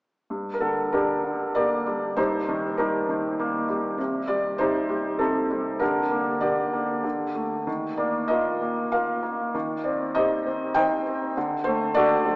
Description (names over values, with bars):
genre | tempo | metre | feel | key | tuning
classical, lyrical solo piano | 98 BPM | 3/4 | rubato | G minor | A4 = 445 Hz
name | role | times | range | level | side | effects
felt-muted upright piano | solo | 0.3-12.4 s | G2 to G5 | -22 LUFS | equal | none
room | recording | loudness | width
wet cathedral reverb, RT60 5.2 s | recorded in a church or concert hall, small speaker sound | -22 LUFS | side -26 dB against mid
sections
0.3-12.4 A section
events
none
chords
0.3 Gm; 2.2 Eb/G; 4.0 Cm; 5.8 Gm/D; 7.0 D5; 7.7 Ebsus2; 9.5 Cm/Eb; 11.4 D